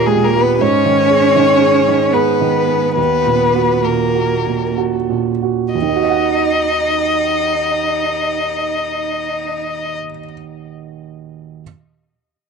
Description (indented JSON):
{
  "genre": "neoclassical piano and strings",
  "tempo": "60-83 BPM",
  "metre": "3/4",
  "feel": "rubato",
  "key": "Eb minor",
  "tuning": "A4 = 440 Hz",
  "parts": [
    { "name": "warm violin", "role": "melody", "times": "0.0-10.0 s", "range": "Ab4 to Eb5", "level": "-16 LUFS", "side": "left 7 dB", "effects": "tape echo" },
    { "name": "rich cello", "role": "second line", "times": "0.0-10.0 s", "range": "Ab3 to Eb4", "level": "-20 LUFS", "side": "right 9 dB", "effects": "tape echo" },
    { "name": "clear upright piano", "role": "accompaniment", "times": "0.0-11.6 s", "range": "Eb2 to Gb5", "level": "-18 LUFS", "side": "right 9 dB", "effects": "none" }
  ],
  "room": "light reverb",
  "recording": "1960s-style stereo with parts hard left and right",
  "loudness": "-13 LUFS",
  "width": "side -5 dB against mid",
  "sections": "0.0-5.7 A section; 5.7-11.6 B section",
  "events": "slowing down 0.0-5.7",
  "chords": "0.0 Eb; 0.6 Abm; 3.0 Ebm"
}